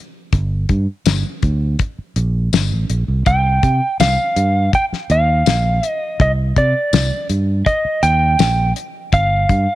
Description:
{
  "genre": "straight-eighth soul blues",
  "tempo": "82 BPM",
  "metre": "4/4",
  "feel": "straight",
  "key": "unclear",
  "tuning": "A4 = 440 Hz",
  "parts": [
    { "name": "fingered electric bass", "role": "bass", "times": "0.3-9.7 s", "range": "G1 to C3", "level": "-17 LUFS", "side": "right 1 dB", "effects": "none" },
    { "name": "damped 70s drum kit", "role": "drums", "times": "0.3-9.7 s", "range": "hi-hat, kick drum, snare drum, tambourine", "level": "-18 LUFS", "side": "left 3 dB", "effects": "none" },
    { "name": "electric slide guitar", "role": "melody", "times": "3.3-9.8 s", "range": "D5 to G5", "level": "-17 LUFS", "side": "right 1 dB", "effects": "none" }
  ],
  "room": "small room ambience",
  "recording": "1960s-style stereo",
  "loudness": "-14 LUFS",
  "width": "side -15 dB against mid",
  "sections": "0.0-9.8 A section",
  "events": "none",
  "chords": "0.0 Gm; 3.3 Cm7; 9.1 G7(no3)"
}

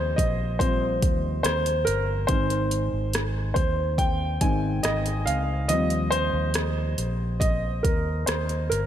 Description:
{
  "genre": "pop ballad",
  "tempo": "70 BPM",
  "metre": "4/4",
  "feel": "straight",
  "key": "Ab major",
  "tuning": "A4 = 440 Hz",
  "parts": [
    { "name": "warm baby grand piano", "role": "accompaniment", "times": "0.0-8.9 s", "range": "Eb3 to Ab5", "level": "-26 LUFS", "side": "equal", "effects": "slapback echo" },
    { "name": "fingered electric bass", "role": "bass", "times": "0.0-8.9 s", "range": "G1 to Eb2", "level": "-27 LUFS", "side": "equal", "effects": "none" },
    { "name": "smooth R&B drum kit", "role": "drums", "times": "0.2-8.9 s", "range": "hi-hat, kick drum, rim click", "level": "-27 LUFS", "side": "equal", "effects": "overdrive" }
  ],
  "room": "light reverb, digital ambience",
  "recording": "none",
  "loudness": "-22 LUFS",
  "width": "side -10 dB against mid",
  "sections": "0.0-8.9 A section",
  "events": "grand piano solo 0.0-8.9",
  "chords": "0.0 Eb6; 2.3 Ab; 5.7 Eb6"
}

